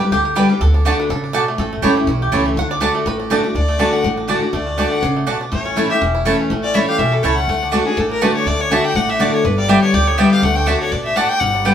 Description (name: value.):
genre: bluegrass.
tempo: 244 BPM.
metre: 4/4.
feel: swing 54% on 8ths.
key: D major.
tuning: A4 = 440 Hz.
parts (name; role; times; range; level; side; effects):
bluegrass banjo; melody; 0.0-11.7 s; D3 to F#5; -24 LUFS; right 3 dB; none.
picked steel-string acoustic guitar; accompaniment; 0.0-11.7 s; E2 to G4; -18 LUFS; left 2 dB; none.
upright bass; bass; 0.1-11.7 s; E1 to D2; -21 LUFS; equal; none.
mandolin; stabs; 0.4-11.7 s; A3 to A5; -20 LUFS; right 5 dB; none.
clear fiddle; melody; 3.5-11.7 s; G#4 to G5; -19 LUFS; left 3 dB; none.
room: wet studio reverb, RT60 0.6 s.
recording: band playing live in one room.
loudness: -14 LUFS.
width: side -9 dB against mid.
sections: 0.0-3.6 A section; 3.6-11.4 A section.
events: five-string banjo solo 0.0-3.6; fiddle solo 3.6-11.7.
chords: 0.0 G; 0.6 D; 1.6 A; 2.6 D; 5.5 A; 7.5 D; 9.4 G; 10.4 D.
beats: 0.12 0.36 | 0.61 0.85 1.10 1.34 | 1.59 1.84 2.08 2.33 | 2.57 2.82 3.06 3.31 | 3.55 3.80 4.04 4.29 | 4.54 4.78 5.03 5.27 | 5.52 5.76 6.01 6.25 | 6.50 6.75 6.99 7.24 | 7.48 7.73 7.97 8.22 | 8.46 8.71 8.96 9.20 | 9.45 9.69 9.94 10.18 | 10.43 10.67 10.92 11.17 | 11.41 11.66.